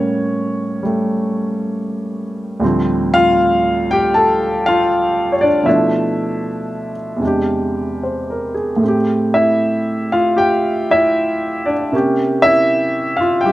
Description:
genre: solo jazz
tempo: 78 BPM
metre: 4/4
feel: swing 69% on 8ths, rubato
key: unclear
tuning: A4 = 440 Hz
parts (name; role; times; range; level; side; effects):
- warm concert grand piano; solo; 0.0-13.5 s; D2 to A5; -14 LUFS; equal; none
room: light reverb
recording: recorded outdoors, with no room sound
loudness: -14 LUFS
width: side -16 dB against mid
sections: 0.0-13.5 A section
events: none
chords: 0.0 A7b9; 2.6 Dm7; 5.7 Bm7b5; 7.2 E7alt; 8.8 Am7; 11.9 C7b9

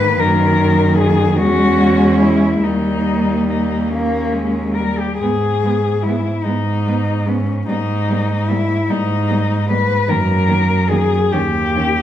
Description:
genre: classical, lyrical piece for cello ensemble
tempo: 48 BPM (dotted quarters)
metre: 6/8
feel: uneven beats, rubato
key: unclear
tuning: A4 = 440 Hz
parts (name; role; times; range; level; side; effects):
- warm cello; melody; 0.0-12.0 s; C#4 to B4; -19 LUFS; left 5 dB; none
- warm cello; second line; 0.0-11.8 s; A#3 to C#4; -24 LUFS; right 5 dB; none
- warm cello; accompaniment; 0.0-11.8 s; D#3 to A#3; -20 LUFS; left 1 dB; none
- clear cello; bass; 0.0-12.0 s; D#2 to G#2; -18 LUFS; right 2 dB; none
room: wet recital hall reverb, RT60 1.4 s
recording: none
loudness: -14 LUFS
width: side -11 dB against mid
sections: 0.0-12.0 A section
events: none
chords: 0.2 D#m/F#; 1.4 C#m/E; 2.6 D#; 5.2 G#5; 7.7 D#/G#; 10.1 D#m/F#; 11.3 D#7

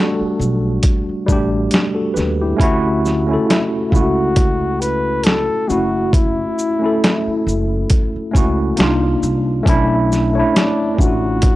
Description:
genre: lo-fi hip hop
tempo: 68 BPM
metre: 4/4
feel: swing 56% on 16ths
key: D major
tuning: A4 = 438 Hz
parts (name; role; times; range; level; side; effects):
- breathy flugelhorn; melody; 0.0-11.6 s; D4 to B4; -21 LUFS; left 2 dB; low-pass filter
- tine electric piano; accompaniment; 0.0-11.6 s; G3 to C#5; -18 LUFS; equal; medium stereo tremolo, cassette tape, low-pass filter
- upright bass; bass; 0.2-11.6 s; F#1 to Eb2; -21 LUFS; equal; transformer saturation
- boom bap sampler-style drum kit; drums; 0.4-11.6 s; hi-hat, kick drum, shaker, snare drum; -16 LUFS; equal; none
room: little or no reverb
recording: dry, gritty hardware recording, cassette tape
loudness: -14 LUFS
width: side -16 dB against mid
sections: 0.0-11.6 A section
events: none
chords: 0.0 Em11 (rootless); 2.6 Dmaj9; 5.7 F#m7; 8.8 Cm11; 9.7 Bm11

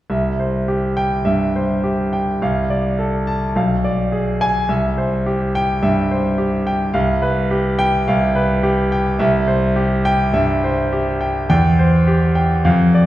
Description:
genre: classical, virtuoso piano study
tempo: 105 BPM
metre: 4/4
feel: rubato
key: C major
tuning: A4 = 440 Hz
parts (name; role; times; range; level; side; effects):
- clear concert grand piano; solo; 0.1-13.1 s; B1 to A5; -15 LUFS; equal; none
room: wet recital hall reverb, RT60 1.4 s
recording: heard from further back in the room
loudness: -15 LUFS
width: side -14 dB against mid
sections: 0.1-13.1 A section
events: none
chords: 0.1 C; 2.4 Dm7/C; 3.6 Bdim7; 4.7 C; 7.0 G7/C; 9.2 C; 11.5 C/E

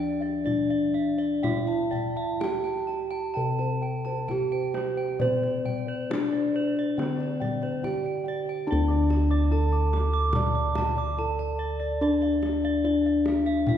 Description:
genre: Javanese gamelan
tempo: 61-72 BPM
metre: 4/4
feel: straight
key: D slendro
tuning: A4 = 440 Hz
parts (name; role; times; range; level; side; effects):
- gamelan-type bronze metallophone; melody; 0.0-13.8 s; C4-40c to D5; -27 LUFS; left 2 dB; none
- gamelan-type bossed gongs; arpeggios; 0.0-13.8 s; C5-40c to D6; -36 LUFS; equal; none
- gamelan-type bronze metallophone; arpeggios; 0.0-13.8 s; C5-40c to D6; -33 LUFS; right 3 dB; none
- gamelan-type bossed gongs; bass; 0.0-13.8 s; D2 to C5-40c; -29 LUFS; equal; none
- kendang; percussion; 0.2-13.8 s; none; -34 LUFS; left 2 dB; none
room: wet concert hall reverb, RT60 1.9 s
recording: heard from further back in the room, nothing above 10.9 kHz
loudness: -24 LUFS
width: side -9 dB against mid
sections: 0.0-8.7 A section; 8.7-13.8 B section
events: none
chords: none

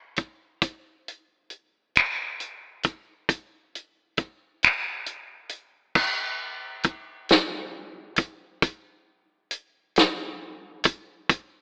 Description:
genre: R&B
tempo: 45 BPM (dotted quarters)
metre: 6/8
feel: straight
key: none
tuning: none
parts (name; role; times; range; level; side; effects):
- warm soul drum kit; drums; 0.2-11.5 s; crash cymbal, finger snaps, hi-hat, kick drum, snare drum; -24 LUFS; equal; none
room: moderate lush hall reverb, RT60 2.4 s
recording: rough home demo mix, AM radio sound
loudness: -27 LUFS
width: mono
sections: 0.0-6.0 A section; 6.0-11.6 B section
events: kick muted 4.6-6.0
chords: none

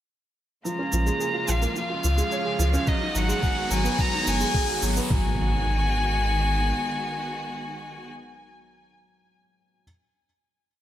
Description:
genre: piano and strings electronica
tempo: 108 BPM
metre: 4/4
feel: straight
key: G# dorian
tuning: A4 = 438 Hz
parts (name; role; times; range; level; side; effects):
- warm violin; melody; 0.7-8.1 s; D#5 to A#5; -28 LUFS; left 1 dB; low-pass filter, digital delay
- clear symphonic string section; sustained chords; 0.7-8.1 s; C#3 to F#4; -32 LUFS; equal; sidechain pumping
- felt-muted upright piano; riff; 0.7-9.8 s; E#3 to C#5; -30 LUFS; right 1 dB; digital delay
- shaker; drums; 0.7-5.1 s; none; -34 LUFS; right 1 dB; none
- riser and impact; sound effects; 1.8-8.8 s; none; -32 LUFS; left 1 dB; none
- warm sub bass; bass; 0.9-6.7 s; F#1 to C#2; -25 LUFS; equal; sidechain pumping
- electronic kick drum; drums; 2.9-5.2 s; none; -25 LUFS; equal; none
room: light reverb, small room reverb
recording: none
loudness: -22 LUFS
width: side -12 dB against mid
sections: 0.7-5.1 build; 5.1-7.3 final chord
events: build-up 0.7-5.1; riser 1.8-5.1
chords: 0.7 A#m7; 1.8 C#; 2.9 G#m7

